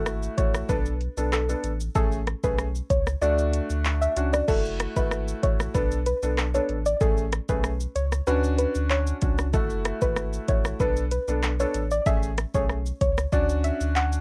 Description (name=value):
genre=dancehall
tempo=95 BPM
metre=4/4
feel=straight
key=F# minor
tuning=A4 = 440 Hz
part: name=soft round pluck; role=melody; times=0.0-14.2 s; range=A4 to F#5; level=-30 LUFS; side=equal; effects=chorus, slapback echo
part: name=warm baby grand piano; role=accompaniment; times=0.0-14.2 s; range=A3 to A4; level=-33 LUFS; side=equal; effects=sidechain pumping
part: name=warm sub bass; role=bass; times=0.0-14.2 s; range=F#1 to D2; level=-30 LUFS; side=equal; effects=none
part: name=afro-pop drum kit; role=drums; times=0.1-14.2 s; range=crash cymbal, handclaps, hi-hat, kick drum, rim click, shaker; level=-29 LUFS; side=equal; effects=none
room=little or no reverb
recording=worn, warbling old tape, cassette tape, warbly pitch drift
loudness=-25 LUFS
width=mono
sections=0.0-4.5 A section; 4.5-14.2 B section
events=kick muted 3.2-4.5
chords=0.0 F#m7; 0.7 Bm7; 2.0 Amaj7; 3.2 Dmaj7; 4.5 F#m7; 5.7 Bm7; 7.0 Amaj7; 8.3 Dmaj7; 9.5 F#m7; 10.8 Bm7; 12.1 Amaj7; 13.3 Dmaj7